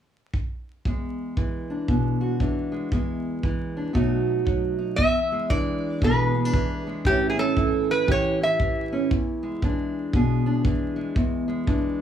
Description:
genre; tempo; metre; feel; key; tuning
acoustic country blues, solo or duo; 116 BPM; 4/4; swing 60% on 8ths; E mixolydian; A4 = 435 Hz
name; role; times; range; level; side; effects
kick drum; drums; 0.3-11.8 s; none; -26 LUFS; equal; none
fingerpicked steel-string acoustic guitar; accompaniment; 0.9-12.0 s; E2 to G#4; -24 LUFS; equal; none
metal-body resonator slide guitar; melody; 5.0-8.9 s; G4 to E5; -23 LUFS; right 1 dB; plate reverb
room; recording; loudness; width
moderate small room ambience, RT60 0.5 s; vinyl crackle, studio ambience; -22 LUFS; side -9 dB against mid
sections
0.9-5.0 A section; 5.0-12.0 B section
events
none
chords
0.0 N.C.; 0.9 E7; 4.0 B7; 5.0 E7; 7.1 A7; 9.1 E7

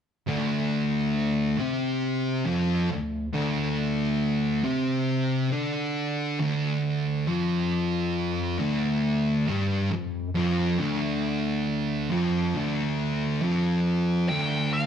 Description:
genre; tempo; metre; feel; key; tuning
metal; 68 BPM; 4/4; straight; D minor; A4 = 440 Hz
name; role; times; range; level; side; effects
thick fuzz guitar; riff; 0.3-14.9 s; D2 to D4; -27 LUFS; left 4 dB; distortion
thick fuzz guitar; riff; 0.3-14.9 s; D2 to D4; -27 LUFS; right 4 dB; distortion
fuzz lead guitar; melody; 14.3-14.9 s; F5 to G5; -28 LUFS; equal; wah, distortion
analog drone; sustained chords; 14.9 s; none; barely audible; none; none
room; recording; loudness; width
moderate large studio reverb, RT60 1.1 s; band playing live in one room; -24 LUFS; side -8 dB against mid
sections
0.3-14.3 A section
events
none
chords
0.3 Dm; 7.3 Dmadd11; 14.3 Dm

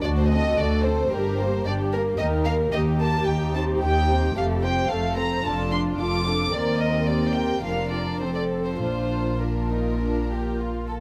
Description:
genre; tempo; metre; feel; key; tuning
quick classical-period movement for string orchestra; 110 BPM; 4/4; uneven beats, rubato; Bb major; A4 = 441 Hz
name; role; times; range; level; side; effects
warm chamber violin section; melody; 0.0-10.9 s; Bb4 to D6; -30 LUFS; equal; none
warm symphonic violin section; second line; 0.0-11.0 s; A3 to C5; -31 LUFS; equal; none
dark symphonic viola section; accompaniment; 0.0-10.8 s; D4 to Bb4; -32 LUFS; equal; none
rich symphonic double bass section; bass; 0.0-11.0 s; F1 to Eb2; -30 LUFS; equal; none
warm studio cello section; bass; 0.0-11.0 s; D2 to Bb2; -30 LUFS; equal; none
room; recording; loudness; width
moderate scoring stage reverb, RT60 1.9 s; close, detailed microphones; -24 LUFS; mono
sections
0.0-11.0 A section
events
none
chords
0.0 D7; 1.1 Gm; 2.2 Eb; 3.3 Cm/Eb; 4.4 F; 5.4 Dm/F; 6.5 Cm7/Eb; 7.6 Bb/F; 8.2 F; 8.8 Bb

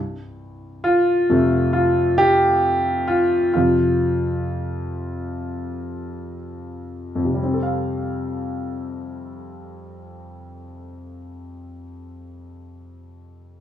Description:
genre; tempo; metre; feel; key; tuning
pop; 60-67 BPM; 4/4; straight; F major; A4 = 442 Hz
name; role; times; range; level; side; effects
clear concert grand piano; accompaniment; 0.8-13.6 s; F2 to F5; -20 LUFS; equal; none
room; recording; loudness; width
wet large studio reverb, RT60 0.8 s; band playing live in one room; -18 LUFS; side -10 dB against mid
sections
0.0-7.4 A section; 7.4-11.3 B section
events
slowing down 0.0-7.4; grand piano solo 0.0-7.4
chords
0.0 Fadd9; 3.5 F5; 7.4 Fadd9

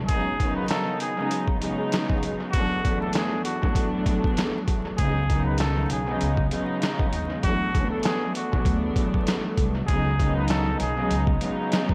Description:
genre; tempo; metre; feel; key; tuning
hip hop, boom-bap hip-hop; 98 BPM; 4/4; swing 55% on 16ths; C# minor; A4 = 441 Hz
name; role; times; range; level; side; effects
trumpet with straight mute; melody; 0.1-11.3 s; F#4 to B4; -34 LUFS; equal; high-pass filter, low-pass filter, dub echo
dark studio string section; accompaniment; 0.1-11.9 s; E2 to D#4; -29 LUFS; equal; cassette tape, high-pass filter, low-pass filter, dub echo
trip hop sampler-style drum kit; drums; 0.1-11.9 s; handclaps, hi-hat, kick drum, snare drum; -29 LUFS; equal; dub echo
upright bass; bass; 5.0-11.3 s; B1 to E2; -29 LUFS; equal; none
room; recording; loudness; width
light reverb, small room ambience; echo-heavy mix, vinyl crackle; -25 LUFS; mono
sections
0.0-11.9 A section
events
none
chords
0.1 C#9sus4; 2.5 E9sus4; 5.0 C#9sus4; 7.4 E9sus4; 9.9 C#9sus4

